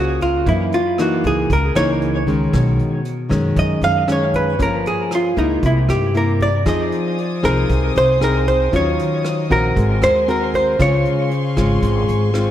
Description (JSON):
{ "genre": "bossa nova", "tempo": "116 BPM", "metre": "4/4", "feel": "straight", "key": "unclear", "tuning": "A4 = 440 Hz", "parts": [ { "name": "hollow-body jazz guitar", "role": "melody", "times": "0.0-11.3 s", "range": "Eb4 to F5", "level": "-19 LUFS", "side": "right 1 dB", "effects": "diffuse ambient delay" }, { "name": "nylon-string guitar", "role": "accompaniment", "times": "0.0-12.5 s", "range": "Gb2 to Bb4", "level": "-19 LUFS", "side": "left 1 dB", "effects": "none" }, { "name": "upright bass", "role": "bass", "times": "0.0-12.5 s", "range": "G1 to G2", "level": "-20 LUFS", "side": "equal", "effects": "none" }, { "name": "vintage brush drum kit", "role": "drums", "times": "0.2-12.5 s", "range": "hi-hat, kick drum, rim click", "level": "-27 LUFS", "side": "equal", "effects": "none" }, { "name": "warm studio string section", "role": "sustained chords", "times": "6.7-12.5 s", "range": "Bb4 to Eb6", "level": "-30 LUFS", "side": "left 2 dB", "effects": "none" } ], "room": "moderate lush hall reverb, RT60 1.7 s, small room ambience", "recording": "dreamy mix soaked in reverb", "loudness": "-15 LUFS", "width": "side -11 dB against mid", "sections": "0.0-12.5 A section", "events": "hollow-body jazz guitar solo 0.0-12.5", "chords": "0.5 Gb13; 2.5 B69; 4.6 Gm7b5; 5.6 C7b13; 6.7 Fm7; 8.7 Ebm9; 9.8 Ab9; 10.8 Dbmaj7" }